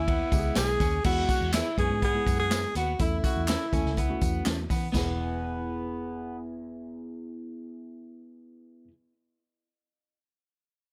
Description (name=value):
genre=uptempo 1960s-style soul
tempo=123 BPM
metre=4/4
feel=straight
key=E major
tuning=A4 = 441 Hz
part: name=breathy tenor saxophone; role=melody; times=0.0-4.5 s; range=E4 to G#4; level=-32 LUFS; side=equal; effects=none
part: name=vintage muted fingered electric bass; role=bass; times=0.0-8.9 s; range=E1 to E3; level=-34 LUFS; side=equal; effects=none
part: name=electric guitar through a small old amp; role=riff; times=0.1-6.4 s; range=B3 to F#4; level=-39 LUFS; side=equal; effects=none
part: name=vintage drum kit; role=drums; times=0.1-5.1 s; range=crash cymbal, hi-hat, kick drum, ride cymbal, snare drum, splash cymbal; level=-31 LUFS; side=equal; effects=none
part: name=tine electric piano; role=accompaniment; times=0.3-8.9 s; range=G#3 to B4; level=-39 LUFS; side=equal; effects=overdrive
part: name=tambourine and handclaps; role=percussion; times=0.3-5.2 s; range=none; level=-41 LUFS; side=equal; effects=none
part: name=electric guitar through a small old amp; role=stabs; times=0.6-8.9 s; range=B3 to A4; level=-40 LUFS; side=equal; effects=subtle chorus, tape echo
room=little or no reverb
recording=none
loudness=-27 LUFS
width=mono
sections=0.0-1.0 A section; 1.0-4.9 B section; 4.9-8.8 C section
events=none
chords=0.0 E; 3.0 A; 4.9 E